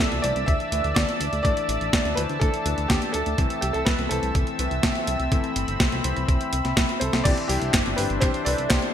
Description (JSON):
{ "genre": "italo disco", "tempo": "124 BPM", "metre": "4/4", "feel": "straight", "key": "A minor", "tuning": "A4 = 440 Hz", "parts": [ { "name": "bright grand piano", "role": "melody", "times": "0.0-8.9 s", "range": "E4 to E5", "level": "-28 LUFS", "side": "equal", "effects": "digital delay" }, { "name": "warm analog pad", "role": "sustained chords", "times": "0.0-8.9 s", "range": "C4 to E6", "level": "-28 LUFS", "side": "equal", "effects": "chorus" }, { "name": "warm electric grand piano", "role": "stabs", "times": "0.0-8.9 s", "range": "E3 to C5", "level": "-34 LUFS", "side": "left 6 dB", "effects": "analog chorus" }, { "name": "chorused synth bass", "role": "bass", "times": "0.0-8.8 s", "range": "G1 to D2", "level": "-28 LUFS", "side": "equal", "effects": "none" }, { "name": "clean 12-bit digital drum machine", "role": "drums", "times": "0.1-8.9 s", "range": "crash cymbal, handclaps, hi-hat, snare drum", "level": "-26 LUFS", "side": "equal", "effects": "overdrive, gated reverb" }, { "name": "electronic kick drum", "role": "drums", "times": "0.5-8.8 s", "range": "none", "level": "-24 LUFS", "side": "equal", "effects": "none" } ], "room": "moderate lush hall reverb, RT60 1.9 s, digital ambience", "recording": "bright 1980s-style digital production", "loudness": "-21 LUFS", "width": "side -9 dB against mid", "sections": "0.0-7.3 A section; 7.3-8.9 B section", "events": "drum fill 6.8-7.3", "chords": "0.0 Dsus2; 3.4 Am/C; 7.3 Cadd9" }